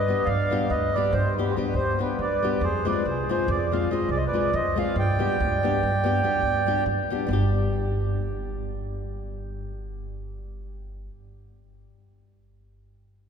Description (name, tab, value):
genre	balkan folk, Balkan wedding band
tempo	282 BPM (eighths)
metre	11/8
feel	straight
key	G phrygian dominant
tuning	A4 = 440 Hz
part	mellow accordion	melody	0.0-6.8 s	B4 to G5	-27 LUFS	right 2 dB	none
part	mellow accordion	second line	0.0-6.8 s	G4 to D5	-30 LUFS	right 1 dB	none
part	upright bass	bass	0.0-11.1 s	G1 to G2	-28 LUFS	equal	none
part	nylon-string guitar	accompaniment	0.1-11.1 s	G3 to Ab4	-29 LUFS	left 4 dB	none
room	wet cathedral reverb, RT60 6.1 s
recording	recorded in a church or concert hall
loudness	-22 LUFS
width	side -7 dB against mid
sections	0.0-7.3 A section; 7.3-9.6 B section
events	none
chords	0.0 G; 2.6 Fm; 5.0 G; 7.3 G5